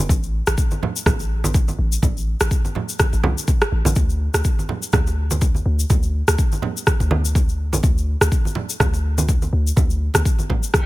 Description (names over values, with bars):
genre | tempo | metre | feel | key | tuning
afro house | 124 BPM | 4/4 | swing 56% on 16ths | unclear | A4 = 440 Hz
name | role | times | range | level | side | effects
warm 808-style bass | bass | 0.0-10.2 s | A1 to D2 | -20 LUFS | equal | sidechain pumping
electronic kick drum | drums | 0.1-10.8 s | none | -18 LUFS | equal | none
congas | percussion | 0.1-10.8 s | none | -25 LUFS | right 3 dB | none
tube shaker | percussion | 0.1-10.8 s | none | -29 LUFS | left 6 dB | none
electronic rim click | drums | 0.5-10.8 s | none | -23 LUFS | equal | overdrive
reverse cymbal | sound effects | 10.8-10.9 s | none | -34 LUFS | equal | none
room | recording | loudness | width
little or no reverb | none | -17 LUFS | side -18 dB against mid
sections
0.0-10.9 A section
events
none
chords
none